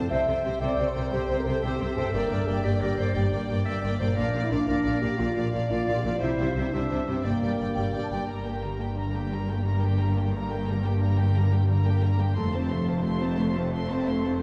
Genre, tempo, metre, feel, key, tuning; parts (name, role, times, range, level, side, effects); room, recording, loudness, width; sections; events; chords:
cinematic, heroic adventure film score; 118 BPM (dotted quarters); 12/8; straight; G dorian; A4 = 440 Hz
rich symphonic violin section; melody; 0.0-14.4 s; E5 to C6; -42 LUFS; equal
clear clarinet; second line; 0.0-8.0 s; G4 to E5; -37 LUFS; equal
warm symphonic violin section; second line; 0.0-14.4 s; G4 to D5; -39 LUFS; equal
warm studio viola section; accompaniment; 0.0-14.4 s; G3 to C4; -37 LUFS; equal
warm French horn section; sustained chords; 0.0-14.4 s; A3 to E5; -33 LUFS; equal
concert harp; arpeggios; 0.0-14.4 s; F2 to C5; -37 LUFS; equal
rich chamber cello section; bass; 0.1-14.4 s; F2 to C3; -33 LUFS; equal
rich symphonic double bass section; bass; 0.1-14.4 s; F1 to C2; -31 LUFS; equal
mellow hollow silver concert flute; second line; 7.8-8.3 s; G5 to A5; -40 LUFS; equal
wet scoring stage reverb, RT60 1.8 s; heard from further back in the room; -26 LUFS; mono
0.0-8.3 A section; 8.3-14.4 B section
0.1 C; 2.1 Gm; 4.2 Bb; 6.2 C; 7.2 Gm; 12.4 F